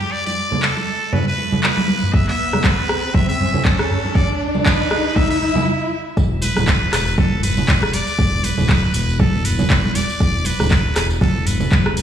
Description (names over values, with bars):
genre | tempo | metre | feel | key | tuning
afro house | 119 BPM | 4/4 | swing 57% on 16ths | unclear | A4 = 440 Hz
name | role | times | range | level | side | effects
trumpet with straight mute | melody | 0.0-12.0 s | G4 to E5 | -23 LUFS | equal | dub echo
congas | percussion | 0.0-12.0 s | none | -22 LUFS | right 2 dB | none
riser | sound effects | 0.1-5.7 s | none | -24 LUFS | equal | none
afro-pop drum kit | drums | 0.6-12.0 s | handclaps, hi-hat, rim click, toms | -22 LUFS | equal | overdrive
electronic kick drum | drums | 2.1-11.8 s | none | -17 LUFS | equal | overdrive
smooth gliding synth bass | bass | 6.2-12.0 s | D1 to E1 | -21 LUFS | equal | sidechain pumping
tambourine | percussion | 6.2-12.0 s | none | -32 LUFS | right 1 dB | none
room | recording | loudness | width
light reverb, studio reverb | played on a big sound system in a bare room, large studio reverb, small room ambience | -15 LUFS | side -9 dB against mid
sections
0.0-6.2 A section; 6.2-12.0 B section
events
build-up 0.0-6.2; riser 0.1-5.7; stop 5.7-6.2; drop 6.2-12.0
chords
0.0 N.C.; 6.2 Dsus2